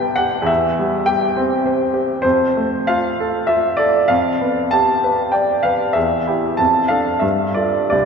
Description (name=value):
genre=classical, romantic character piece for solo piano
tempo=81-107 BPM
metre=3/4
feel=rubato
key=unclear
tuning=A4 = 440 Hz
part: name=clear baby grand piano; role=solo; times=0.0-8.1 s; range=C2 to A5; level=-15 LUFS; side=equal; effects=none
room=wet church reverb, RT60 3.5 s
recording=none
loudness=-15 LUFS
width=side -6 dB against mid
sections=0.0-8.1 A section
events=none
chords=0.5 C/E; 2.2 Fmaj7; 4.1 G7/F; 6.0 Em; 6.6 Dm/F; 7.2 Gsus2